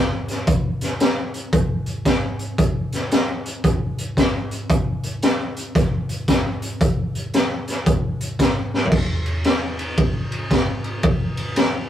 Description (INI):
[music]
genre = blues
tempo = 114 BPM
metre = 4/4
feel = swing 64% on 8ths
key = none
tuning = none
[part]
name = raw garage drum kit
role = drums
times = 0.3-11.7 s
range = crash cymbal, hi-hat, kick drum, ride cymbal, snare drum, toms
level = -19 LUFS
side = equal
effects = none
[sound]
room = little or no reverb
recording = rough rehearsal-room recording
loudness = -19 LUFS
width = side -11 dB against mid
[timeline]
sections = 0.0-8.9 A section; 8.9-11.9 A section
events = drum fill 8.7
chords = none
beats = | 0.47 1.00 1.53 2.06 | 2.59 3.12 3.64 4.17 | 4.70 5.23 5.75 6.28 | 6.81 7.34 7.87 8.39 | 8.92 9.45 9.98 10.51 | 11.04 11.56